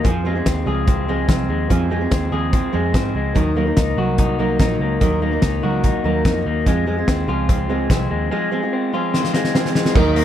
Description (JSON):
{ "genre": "jangly indie pop", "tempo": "145 BPM", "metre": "4/4", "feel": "straight", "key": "unclear", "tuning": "A4 = 437 Hz", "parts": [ { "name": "fingerpicked steel-string acoustic guitar", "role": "accompaniment", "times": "0.0-10.2 s", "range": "Eb3 to Bb4", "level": "-23 LUFS", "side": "right 8 dB", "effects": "none" }, { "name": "electric guitar through a small old amp", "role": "arpeggios", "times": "0.0-10.2 s", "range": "Eb3 to Ab4", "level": "-22 LUFS", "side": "left 5 dB", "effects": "slapback echo" }, { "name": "vintage muted picked electric bass", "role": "bass", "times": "0.0-10.2 s", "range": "Bb1 to Ab2", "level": "-22 LUFS", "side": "equal", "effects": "none" }, { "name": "loose indie drum kit", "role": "drums", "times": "0.0-10.2 s", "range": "crash cymbal, hi-hat, kick drum, snare drum", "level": "-19 LUFS", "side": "equal", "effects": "none" } ], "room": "little or no reverb", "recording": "none", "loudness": "-16 LUFS", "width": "side -10 dB against mid", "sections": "0.0-10.0 A section", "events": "drum fill 9.1-10.0", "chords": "0.0 Fm; 3.4 Ebm; 6.7 Fm" }